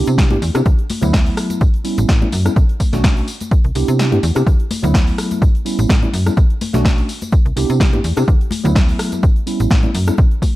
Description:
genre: filtered disco house.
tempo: 126 BPM.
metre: 4/4.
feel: swing 54% on 16ths.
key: D major.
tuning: A4 = 439 Hz.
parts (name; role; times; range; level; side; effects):
mellow tine electric piano; accompaniment; 0.0-10.1 s; F#3 to G4; -20 LUFS; right 1 dB; phaser, sidechain pumping.
slap-like FM bass; bass; 0.0-10.3 s; A1 to C3; -18 LUFS; equal; sidechain pumping.
punchy analog drum machine; drums; 0.1-10.5 s; hi-hat, rim click, snare drum, tambourine; -23 LUFS; equal; overdrive, sidechain pumping on hats, sidechain pumping on perc.
tube shaker and congas; percussion; 0.1-10.5 s; none; -27 LUFS; left 3 dB; sidechain pumping on perc.
electronic kick drum; drums; 0.2-10.5 s; none; -14 LUFS; equal; overdrive.
room: digital ambience.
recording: dark, warm production.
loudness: -13 LUFS.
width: side -16 dB against mid.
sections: 0.0-10.6 A section.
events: kick drops out 4.0-4.5.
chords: 0.0 Cmaj9; 0.7 D69; 1.6 A9; 2.6 Bm9; 3.3 Cmaj9; 4.5 D69; 5.4 A9; 6.4 Bm9; 7.1 Cmaj9; 8.3 D69; 9.2 A9.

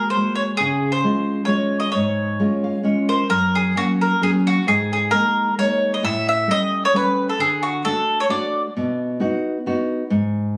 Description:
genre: italian folk.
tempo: 133 BPM.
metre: 3/4.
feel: swing 54% on 8ths.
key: Db major.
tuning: A4 = 442 Hz.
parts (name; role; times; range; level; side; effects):
mandolin; melody; 0.0-8.6 s; F#4 to E5; -22 LUFS; equal; plate reverb.
nylon-string guitar; accompaniment; 0.0-10.5 s; F#2 to F5; -23 LUFS; equal; none.
room: wet studio reverb, RT60 0.5 s.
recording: recorded on a phone in the room, studio ambience.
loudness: -20 LUFS.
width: mono.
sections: 0.0-3.3 A section; 3.3-10.6 B section.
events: nylon-string guitar fill 2.4-3.3.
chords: 0.0 Gbadd9; 0.6 Db; 3.3 F#; 4.7 G#sus2; 6.0 A7; 7.4 D; 8.7 B.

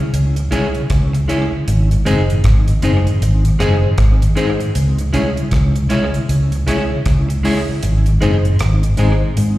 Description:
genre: roots reggae.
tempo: 78 BPM.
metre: 4/4.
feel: swing 60% on 16ths.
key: C# harmonic minor.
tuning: A4 = 440 Hz.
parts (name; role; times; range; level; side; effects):
mellow tonewheel organ; accompaniment; 0.0-9.3 s; G#2 to E4; -23 LUFS; left 2 dB; slow rotary speaker, tape echo, plate reverb.
vintage muted fingered electric bass; bass; 0.1-9.6 s; F#1 to G#2; -14 LUFS; equal; none.
deep reggae drum kit; drums; 0.1-9.6 s; hi-hat, kick drum, rim click; -22 LUFS; equal; tape echo.
clean electric guitar; accompaniment; 0.5-9.1 s; G#3 to G#4; -23 LUFS; right 2 dB; dub echo, plate reverb, slapback echo.
mellow reed electric piano; stabs; 0.5-9.2 s; D#4 to C#5; -23 LUFS; left 4 dB; fast tremolo, plate reverb, slapback echo.
room: little or no reverb.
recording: live gig heard through the venue's PA, recital hall reverb.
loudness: -13 LUFS.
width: side -16 dB against mid.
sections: 0.0-9.6 A section.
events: kick muted 7.8-9.6.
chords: 0.0 C#m; 1.7 G#; 4.7 C#m; 7.8 G#.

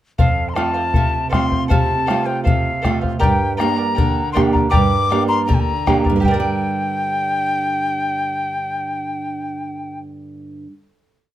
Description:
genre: andean folk, Andean ensemble.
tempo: 80 BPM.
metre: 2/4.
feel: straight.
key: G minor.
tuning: A4 = 441 Hz.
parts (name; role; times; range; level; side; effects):
reedy quena; melody; 0.2-10.0 s; F5 to D6; -21 LUFS; left 2 dB; none.
charango; accompaniment; 0.2-10.8 s; G4 to Bb5; -24 LUFS; right 1 dB; none.
nylon-string guitar; accompaniment; 0.2-10.8 s; F2 to D5; -21 LUFS; right 4 dB; none.
bombo; percussion; 0.2-6.6 s; none; -19 LUFS; left 2 dB; none.
room: moderate studio reverb, RT60 0.5 s.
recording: none.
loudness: -16 LUFS.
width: side -13 dB against mid.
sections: 0.2-6.2 A section; 6.2-9.2 final chord.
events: none.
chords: 0.2 F; 3.2 Gm.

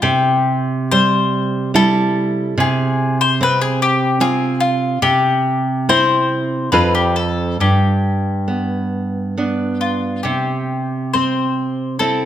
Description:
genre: romantic duo for mandolin and classical guitar.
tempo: 64-75 BPM.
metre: 3/4.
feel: rubato.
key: C major.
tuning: A4 = 439 Hz.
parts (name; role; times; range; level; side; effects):
mandolin; melody; 0.0-12.3 s; F4 to C5; -18 LUFS; left 4 dB; none.
nylon-string guitar; accompaniment; 0.0-12.3 s; F2 to F4; -17 LUFS; right 2 dB; none.
room: moderate recital hall reverb, RT60 1.5 s.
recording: none.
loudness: -15 LUFS.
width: side -10 dB against mid.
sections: 0.0-12.3 A section.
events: none.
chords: 0.0 C; 2.6 F5/C; 5.0 C; 6.7 F; 7.6 G; 10.2 C.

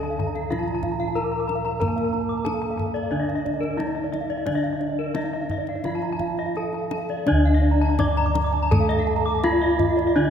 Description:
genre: Balinese gamelan.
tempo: 83-93 BPM.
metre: 4/4.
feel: straight.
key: D pelog.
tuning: A4 = 441 Hz.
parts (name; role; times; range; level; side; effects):
gamelan-type bronze metallophone; melody; 0.0-10.3 s; D4 to D5; -25 LUFS; left 1 dB; none.
gamelan-type bronze metallophone; accompaniment; 0.0-10.3 s; D3 to Bb3-20c; -31 LUFS; right 2 dB; none.
gamelan-type bronze metallophone; arpeggios; 0.0-10.3 s; Bb4-20c to D6; -29 LUFS; left 3 dB; none.
gamelan-type bronze metallophone; arpeggios; 0.0-10.3 s; D5 to D6; -31 LUFS; right 6 dB; none.
gamelan-type bossed gongs; bass; 0.0-10.3 s; D2 to Bb4-20c; -27 LUFS; equal; none.
kendang; percussion; 0.2-10.1 s; none; -30 LUFS; left 1 dB; none.
room: wet cathedral reverb, RT60 5.1 s.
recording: recorded in a church or concert hall.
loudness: -21 LUFS.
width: side -8 dB against mid.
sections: 0.0-7.3 A section; 7.3-10.3 B section.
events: none.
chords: none.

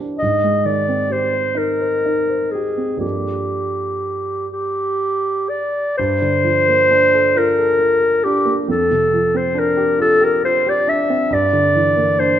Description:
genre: classical, impressionist duo for clarinet and grand piano.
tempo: 39-46 BPM (dotted quarters).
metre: 6/8.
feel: rubato.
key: unclear.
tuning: A4 = 436 Hz.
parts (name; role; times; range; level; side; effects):
dark concert grand piano; accompaniment; 0.0-12.4 s; F2 to C5; -21 LUFS; right 3 dB; none.
mellow clarinet; melody; 0.2-12.4 s; G4 to E5; -16 LUFS; left 1 dB; none.
room: moderate recital hall reverb, RT60 1.4 s.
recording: none.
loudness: -15 LUFS.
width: side -10 dB against mid.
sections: 0.0-6.0 A section; 6.0-12.4 A section.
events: none.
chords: 0.2 Abmaj7; 3.0 Gm9; 8.7 Fsus2; 11.3 Gm6.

